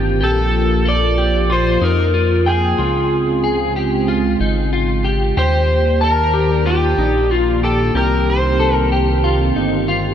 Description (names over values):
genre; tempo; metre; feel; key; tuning
dream pop; 93 BPM; 4/4; straight; unclear; A4 = 440 Hz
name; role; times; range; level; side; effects
warm analog pad; sustained chords; 0.0-10.1 s; Db3 to D5; -20 LUFS; right 2 dB; chorus
clean electric guitar; arpeggios; 0.0-10.1 s; Eb4 to A5; -20 LUFS; left 3 dB; ensemble chorus, digital delay
chorused synth bass; bass; 0.0-10.1 s; G1 to F2; -18 LUFS; equal; none
overdriven slide guitar; melody; 0.2-8.9 s; G4 to D5; -20 LUFS; left 1 dB; digital delay
room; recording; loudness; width
moderate huge ambient reverb, RT60 5.0 s; dark, warm production; -14 LUFS; side -9 dB against mid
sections
0.0-10.1 A section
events
none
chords
0.2 Bbmaj7; 2.8 Dbmaj7; 5.4 Ebmaj7; 8.0 Cm7